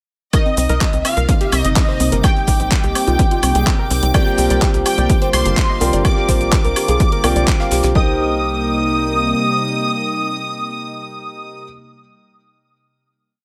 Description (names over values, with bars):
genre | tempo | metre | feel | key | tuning
progressive house | 126 BPM | 4/4 | straight | C minor | A4 = 439 Hz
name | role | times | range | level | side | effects
plucky unison lead | melody | 0.3-11.6 s | Eb5 to Eb6 | -25 LUFS | equal | ensemble chorus, delay
rich chamber violin section | second line | 0.3-11.6 s | Eb5 to Eb6 | -28 LUFS | equal | sidechain pumping, delay
lush unison pad | sustained chords | 1.1-11.6 s | C3 to F4 | -26 LUFS | equal | chorus, sidechain pumping
soft round pluck | arpeggios | 0.3-11.6 s | C4 to F5 | -26 LUFS | equal | chorus, sidechain pumping, delay
damped 70s drum kit | drums | 0.3-7.9 s | hi-hat, snare drum | -36 LUFS | equal | none
electronic kick drum | drums | 0.3-8.1 s | none | -18 LUFS | equal | none
pop drum kit | drums | 0.3-7.9 s | handclaps, hi-hat, shaker, woodblock | -24 LUFS | equal | overdrive
backwards swelling texture | texture | 1.5-8.0 s | D6 | -36 LUFS | equal | built-in reverb, sidechain pumping
tight sequencer bass | bass | 0.6-9.3 s | G1 to C2 | -22 LUFS | equal | sidechain pumping
warm grand piano | stabs | 4.1-11.6 s | C4 to G5 | -25 LUFS | equal | sidechain pumping, delay
room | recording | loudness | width
small room ambience | none | -16 LUFS | mono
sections
0.3-8.0 drop; 8.0-11.8 final chord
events
drop 0.3-8.0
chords
0.3 Cm7; 4.1 Gm7; 8.0 Cm7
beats
| 0.33 0.81 1.29 1.76 | 2.24 2.71 3.19 3.67 | 4.14 4.62 5.10 5.57 | 6.05 6.53 7.00 7.48 | 7.95 8.43 8.91 9.38 | 9.86 10.33 10.81 11.29